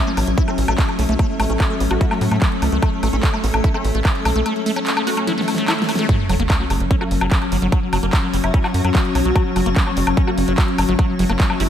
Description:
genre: psychedelic trance.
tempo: 147 BPM.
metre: 4/4.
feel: straight.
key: unclear.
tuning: A4 = 436 Hz.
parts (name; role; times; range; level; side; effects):
evolving wavetable pad; sustained chords; 0.0-11.7 s; F#3 to C#4; -24 LUFS; left 4 dB; chorus, built-in reverb, sidechain pumping.
granular cloud pad; texture; 0.0-11.7 s; A3 to E6; -26 LUFS; right 1 dB; built-in reverb, lush chorus, sidechain pumping.
liquid acid bass; riff; 0.1-11.6 s; F#3 to F#4; -26 LUFS; equal; phaser, auto-pan, cassette tape, sidechain pumping, ping-pong delay.
tight sequencer bass; bass; 0.2-11.7 s; F#1 to A2; -20 LUFS; equal; none.
big-room dance drum kit; drums; 0.2-11.7 s; handclaps, hi-hat, snare drum, woodblock; -24 LUFS; left 1 dB; none.
electronic kick drum; drums; 0.4-11.5 s; none; -18 LUFS; equal; none.
resonant blip pluck; second line; 0.5-11.7 s; A#3 to F#4; -30 LUFS; right 1 dB; phaser, sidechain pumping, high-pass filter, ping-pong delay.
sub drop; sound effects; 6.1-7.7 s; none; -26 LUFS; right 1 dB; none.
room: moderate lush hall reverb, RT60 1.7 s.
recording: dreamy mix soaked in reverb.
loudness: -16 LUFS.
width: side -10 dB against mid.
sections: 0.0-6.1 A section; 6.1-11.7 B section.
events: drum fill 5.3-6.1; band accent 6.0; drop 6.1-11.7; impact 6.1-7.7.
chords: 0.0 A5; 6.1 F#5.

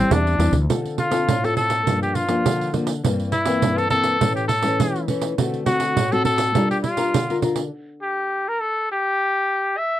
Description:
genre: samba and choro.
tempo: 102 BPM.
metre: 4/4.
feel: straight.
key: D minor.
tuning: A4 = 440 Hz.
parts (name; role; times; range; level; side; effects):
bright trumpet; melody; 0.0-10.0 s; C4 to E5; -21 LUFS; left 1 dB; none.
nylon-string guitar; accompaniment; 0.0-7.7 s; G2 to Bb4; -23 LUFS; left 2 dB; none.
fretless electric bass; bass; 0.1-0.7 s; D2 to E2; -20 LUFS; equal; none.
pandeiro; percussion; 0.1-7.7 s; none; -24 LUFS; right 5 dB; none.
room: moderate booth ambience, RT60 0.2 s.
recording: dry, close 1970s-style studio recording.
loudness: -18 LUFS.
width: side -13 dB against mid.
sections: 0.7-10.0 A section.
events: stop 7.7-10.0.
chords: 0.0 Am7 (rootless); 0.7 Dm7; 1.9 Gm7; 3.0 C7/G; 4.2 A; 5.4 D7; 6.6 Gm7; 7.7 N.C..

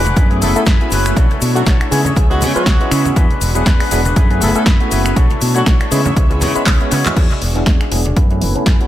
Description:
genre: filtered disco house.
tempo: 120 BPM.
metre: 4/4.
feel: swing 56% on 16ths.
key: F# minor.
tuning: A4 = 442 Hz.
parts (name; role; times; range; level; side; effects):
string machine, full ensemble; sustained chords; 0.0-8.9 s; A3 to D6; -25 LUFS; equal; ensemble chorus, sidechain pumping, low-pass filter.
electric guitar with an envelope filter; riff; 0.0-8.9 s; G#3 to D5; -23 LUFS; left 4 dB; sidechain pumping, low-pass filter, dub echo.
modern bright fingered electric bass; bass; 0.0-8.8 s; E1 to C#3; -18 LUFS; equal; sidechain pumping, low-pass filter.
house drum kit; drums; 0.1-8.9 s; crash cymbal, finger snaps, handclaps, hi-hat, shaker, snare drum; -21 LUFS; equal; sidechain pumping on hats, sidechain pumping on perc, sidechain pumping on cymbals, dub echo.
congas and egg shaker; percussion; 0.1-8.9 s; none; -26 LUFS; right 2 dB; none.
electronic kick drum; drums; 0.2-8.8 s; none; -13 LUFS; equal; none.
tine electric piano; accompaniment; 0.3-8.9 s; F#3 to B4; -20 LUFS; equal; phaser, vintage 12-bit sampler grit, sidechain pumping, low-pass filter, dub echo.
mellow horn section; melody; 0.4-5.8 s; F#3 to A4; -24 LUFS; equal; sidechain pumping, low-pass filter, dub echo.
room: digital ambience.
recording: echo-heavy mix.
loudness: -11 LUFS.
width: side -13 dB against mid.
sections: 0.0-7.2 A section; 7.2-8.9 B section.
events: drop 0.0-7.2; drum fill 6.7-7.2; filter sweep 7.2-8.9.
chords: 0.2 F#m11; 1.2 Bm11; 1.9 C#m7; 3.2 E9; 4.2 F#m11; 5.2 Bm11; 5.9 C#m7; 7.2 E9; 8.2 F#m11.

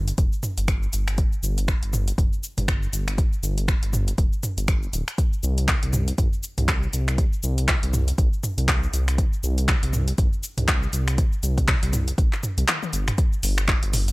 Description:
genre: afro house.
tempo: 120 BPM.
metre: 4/4.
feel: swing 58% on 16ths.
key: G minor.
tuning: A4 = 439 Hz.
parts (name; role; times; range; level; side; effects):
dark detuned saw bass; bass; 0.0-14.1 s; D1 to C2; -24 LUFS; equal; sidechain pumping.
deep house drum kit; drums; 0.1-14.1 s; cabasa, finger snaps, handclaps, hi-hat, toms; -26 LUFS; equal; none.
electronic kick drum; drums; 0.2-13.8 s; none; -22 LUFS; equal; none.
room: little or no reverb.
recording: none.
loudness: -20 LUFS.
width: side -22 dB against mid.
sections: 0.0-13.2 A section.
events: kick drops out 12.7-13.2; drum fill 12.7-13.2.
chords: none.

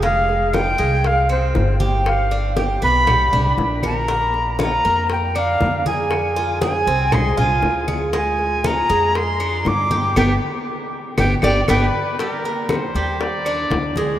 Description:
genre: latin, Cuban son and guajira.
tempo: 118 BPM.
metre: 4/4.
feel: straight.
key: unclear.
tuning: A4 = 440 Hz.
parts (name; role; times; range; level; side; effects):
jazz flute; melody; 0.0-11.8 s; C5 to D6; -20 LUFS; equal; none.
Cuban tres; arpeggios; 0.0-14.2 s; G3 to Bb4; -23 LUFS; right 2 dB; none.
upright bass; bass; 0.0-14.2 s; F1 to G2; -22 LUFS; equal; none.
bongos; percussion; 0.0-14.2 s; none; -27 LUFS; left 4 dB; none.
congas; percussion; 0.0-14.2 s; none; -26 LUFS; left 1 dB; none.
claves; percussion; 0.5-13.7 s; none; -34 LUFS; left 2 dB; none.
clear trumpet; second line; 11.4-14.2 s; Bb4 to D5; -25 LUFS; left 2 dB; none.
room: wet cathedral reverb, RT60 5.5 s.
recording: in a vast, echoing space.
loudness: -16 LUFS.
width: side -12 dB against mid.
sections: 0.0-12.2 A section; 12.2-14.2 B section.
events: band accent 10.2-12.2; drum fill 11.4-12.2.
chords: 0.0 Fmadd9; 2.1 G; 4.1 Bb; 6.1 Fm; 8.1 Ddim; 10.2 G; 12.2 Cm7; 13.2 Ebmaj7.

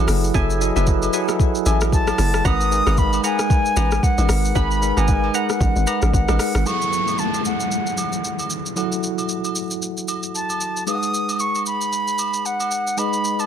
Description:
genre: amapiano.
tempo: 114 BPM.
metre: 4/4.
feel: swing 58% on 16ths.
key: F# dorian.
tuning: A4 = 438 Hz.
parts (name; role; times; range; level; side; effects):
concert flute; melody; 0.0-13.5 s; F#5 to D#6; -23 LUFS; equal; ping-pong delay.
tine electric piano; accompaniment; 0.0-13.5 s; F#3 to G#5; -24 LUFS; equal; medium stereo tremolo.
hollow log drum bass; bass; 0.0-6.6 s; F#1 to A1; -20 LUFS; equal; none.
smooth R&B drum kit; drums; 0.1-13.5 s; hi-hat, kick drum, rim click, shaker; -22 LUFS; equal; overdrive.
percussive organ stab; stabs; 0.3-6.0 s; A4 to B5; -28 LUFS; equal; chorus, phaser, ping-pong delay.
agogo bells and woodblock; percussion; 0.3-13.5 s; none; -32 LUFS; right 6 dB; none.
downlifter; sound effects; 6.7-10.9 s; none; -27 LUFS; left 1 dB; none.
room: little or no reverb.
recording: dense, heavily limited modern master.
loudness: -18 LUFS.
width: side -9 dB against mid.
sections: 0.0-6.7 A section; 6.7-13.5 B section.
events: drop 0.0-6.7.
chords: 0.0 F#m9; 2.5 G#m9; 6.7 F#m9; 10.9 G#m7.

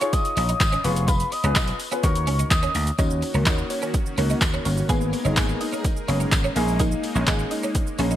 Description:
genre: dance-pop.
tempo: 126 BPM.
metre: 4/4.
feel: straight.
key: Eb minor.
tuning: A4 = 443 Hz.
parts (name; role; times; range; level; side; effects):
soft octave-layered synth lead; melody; 0.0-2.8 s; Cb6 to Eb6; -27 LUFS; left 1 dB; chorus, tremolo, digital delay.
warm baby grand piano; accompaniment; 0.0-8.2 s; Bb3 to Db5; -30 LUFS; left 3 dB; lush chorus, sidechain pumping.
twelve-string electric guitar; riff; 0.0-8.2 s; Ab3 to Ab4; -32 LUFS; right 4 dB; ensemble chorus.
punchy analog drum machine; drums; 0.0-8.2 s; handclaps, hi-hat, kick drum, shaker; -24 LUFS; equal; overdrive, gated reverb.
tambourine; percussion; 0.1-8.1 s; none; -40 LUFS; left 4 dB; none.
vintage slap bass; bass; 0.4-8.1 s; F1 to Eb2; -24 LUFS; equal; sidechain pumping.
soft round pluck; melody; 3.0-8.2 s; Bb3 to Eb5; -29 LUFS; equal; chorus, sidechain pumping, digital delay.
soft supersaw; sustained chords; 3.0-8.2 s; Eb3 to Bb4; -32 LUFS; equal; sidechain pumping.
room: light reverb, digital ambience.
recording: bright 1980s-style digital production.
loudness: -20 LUFS.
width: side -12 dB against mid.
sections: 0.0-3.0 A section; 3.0-8.2 B section.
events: none.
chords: 0.0 Bb7sus4; 0.8 Fdim; 2.0 Ebm7; 4.9 Abmadd9; 6.6 Bb7sus4.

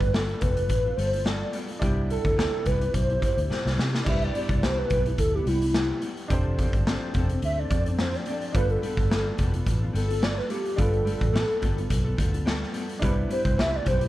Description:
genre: indie pop, bedroom pop.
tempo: 107 BPM.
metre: 4/4.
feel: swing 55% on 16ths.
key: C major.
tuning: A4 = 441 Hz.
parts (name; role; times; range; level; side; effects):
warbly nostalgic lead; melody; 0.0-14.1 s; E4 to E5; -28 LUFS; equal; ensemble chorus, slapback echo.
nylon-string guitar; accompaniment; 0.0-14.1 s; C3 to A4; -34 LUFS; left 2 dB; lush chorus, vibrato effect.
warm upright piano; accompaniment; 0.0-14.1 s; D4 to C5; -37 LUFS; right 2 dB; cassette tape.
vintage muted fingered electric bass; bass; 0.0-14.1 s; F1 to C3; -27 LUFS; equal; none.
raw garage drum kit; drums; 0.0-14.1 s; crash cymbal, hi-hat, kick drum, snare drum; -27 LUFS; equal; none.
room: little or no reverb.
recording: none.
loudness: -23 LUFS.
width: side -15 dB against mid.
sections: 0.0-4.1 A section; 4.1-14.1 B section.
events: drum fill 3.5-4.1; soft synth lead solo 4.1-14.1.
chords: 0.0 G9; 1.8 Cmaj7; 6.3 F6; 8.5 G9; 13.0 Cmaj7.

